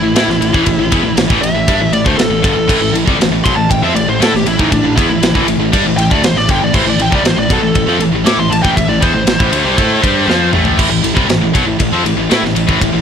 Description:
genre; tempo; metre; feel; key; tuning
heavy metal; 118 BPM; 4/4; straight; A minor; A4 = 440 Hz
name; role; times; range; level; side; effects
high-gain lead guitar; melody; 0.0-10.5 s; D4 to D6; -17 LUFS; equal; distortion, ping-pong delay
distorted electric guitar; riff; 0.0-13.0 s; G2 to A4; -17 LUFS; left 14 dB; overdrive
high-gain distorted guitar; riff; 0.0-13.0 s; G2 to A4; -18 LUFS; right 12 dB; distortion
fuzz fingered electric bass; bass; 0.0-13.0 s; G1 to A2; -19 LUFS; equal; overdrive
tight metal drum kit; drums; 0.2-12.9 s; crash cymbal, kick drum, ride cymbal, snare drum, toms; -15 LUFS; equal; none
high-gain distorted guitar; riff; 2.7-13.0 s; G2 to A4; -20 LUFS; equal; distortion
room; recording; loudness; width
little or no reverb; blown-out, overdriven recording, overdrive; -10 LUFS; side -7 dB against mid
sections
0.0-10.8 A section; 10.8-13.0 B section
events
lead electric guitar solo 0.0-10.8; drum fill 10.3-10.8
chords
0.0 Am

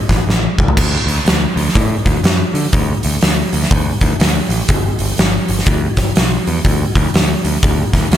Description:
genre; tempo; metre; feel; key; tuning
blues rock power trio and southern rock; 122 BPM; 4/4; swing 62% on 8ths; unclear; A4 = 440 Hz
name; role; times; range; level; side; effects
growling picked electric bass; bass; 0.1-8.2 s; G1 to D3; -17 LUFS; equal; overdrive
oversized low-tuned drum kit; drums; 0.1-8.2 s; crash cymbal, hi-hat, kick drum, snare drum, toms; -14 LUFS; equal; none
room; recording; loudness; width
light reverb; none; -12 LUFS; side -11 dB against mid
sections
0.8-8.2 A section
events
drum fill 0.3-0.8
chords
none

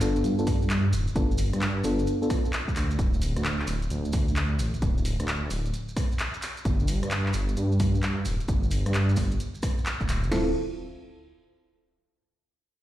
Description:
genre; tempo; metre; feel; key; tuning
UK garage, two-step garage; 131 BPM; 4/4; swing 65% on 16ths; D dorian; A4 = 439 Hz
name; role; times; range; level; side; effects
FM electric piano; stabs; 0.0-2.3, 10.3-10.5 s; B3 to A4; -28 LUFS; equal; chorus, digital delay
dark detuned saw bass; bass; 0.0-10.5 s; D1 to G2; -26 LUFS; equal; none
punchy analog drum machine; drums; 0.0-10.3 s; handclaps, hi-hat, rim click; -33 LUFS; equal; none
maracas; percussion; 0.0-10.3 s; none; -43 LUFS; right 4 dB; none
punchy analog drum machine; drums; 0.5-10.5 s; crash cymbal, kick drum, snare drum; -27 LUFS; equal; none
room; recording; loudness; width
light reverb; played on a big sound system in a bare room, large studio reverb; -24 LUFS; side -13 dB against mid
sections
0.0-10.3 A section; 10.3-12.1 B section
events
none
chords
0.0 G7; 3.0 D5; 6.7 G5; 10.3 Dm9

